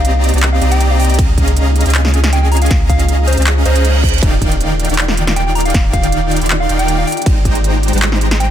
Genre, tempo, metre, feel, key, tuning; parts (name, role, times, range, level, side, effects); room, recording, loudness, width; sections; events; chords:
future bass; 158 BPM; 4/4; half-time; Eb major; A4 = 440 Hz
soft struck synth lead; melody; 0.0-8.5 s; C5 to Bb5; -22 LUFS; equal; chorus, sidechain pumping, tape echo
shimmering ambient pad; sustained chords; 0.0-8.5 s; C3 to D5; -23 LUFS; equal; chorus, built-in reverb, sidechain pumping
supersaw chords; riff; 0.0-8.5 s; Eb3 to C6; -18 LUFS; equal; sidechain pumping
saturated sub bass; bass; 0.0-8.5 s; Eb1 to Db2; -14 LUFS; equal; sidechain pumping
dubstep drum kit; drums; 0.0-8.5 s; handclaps, hi-hat, ride cymbal, snare drum; -20 LUFS; right 1 dB
electronic kick drum; drums; 1.2-7.5 s; -14 LUFS; equal
reverse cymbal; sound effects; 3.6-4.2 s; -24 LUFS; right 6 dB
little or no reverb; dense, heavily limited modern master; -11 LUFS; side -10 dB against mid
0.0-8.5 A section
reverse cymbal 3.6-4.2
0.0 Cm7; 1.2 Db69; 4.2 Ebmaj9; 7.1 Abmaj7